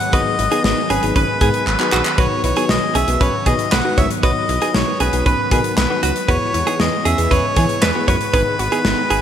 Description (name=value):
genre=synth-pop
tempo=117 BPM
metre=4/4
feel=straight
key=unclear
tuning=A4 = 440 Hz
part: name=melodica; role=melody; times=0.0-9.2 s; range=B4 to F#5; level=-20 LUFS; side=left 1 dB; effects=digital delay
part: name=brassy analog pad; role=sustained chords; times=0.0-9.2 s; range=D#3 to G#4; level=-28 LUFS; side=right 1 dB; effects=chorus
part: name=wide unison pluck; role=arpeggios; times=0.0-9.2 s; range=C#4 to G#4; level=-29 LUFS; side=left 1 dB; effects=digital delay
part: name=modern studio drum kit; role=drums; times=0.0-9.2 s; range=handclaps, hi-hat, kick drum, snare drum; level=-20 LUFS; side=equal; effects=gated reverb
part: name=direct-recorded clean electric guitar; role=second line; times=0.1-9.2 s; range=F#4 to C#5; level=-23 LUFS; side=right 5 dB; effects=lush chorus, digital delay
part: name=bell-like tine electric piano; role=accompaniment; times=0.1-9.0 s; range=B3 to C#5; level=-24 LUFS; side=left 3 dB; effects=fast stereo tremolo
part: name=smooth gliding synth bass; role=bass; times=0.1-9.2 s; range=G#1 to E3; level=-22 LUFS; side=equal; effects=none
room=moderate lush hall reverb, RT60 2.6 s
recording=bright 1980s-style digital production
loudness=-14 LUFS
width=side -9 dB against mid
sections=0.0-9.2 A section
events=drum fill 1.7-2.2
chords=0.0 G#m7; 2.2 B; 6.3 E; 8.3 G#m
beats=| 0.13 0.64 1.16 1.67 | 2.18 2.69 3.21 3.72 | 4.23 4.75 5.26 5.77 | 6.29 6.80 7.31 7.82 | 8.34 8.85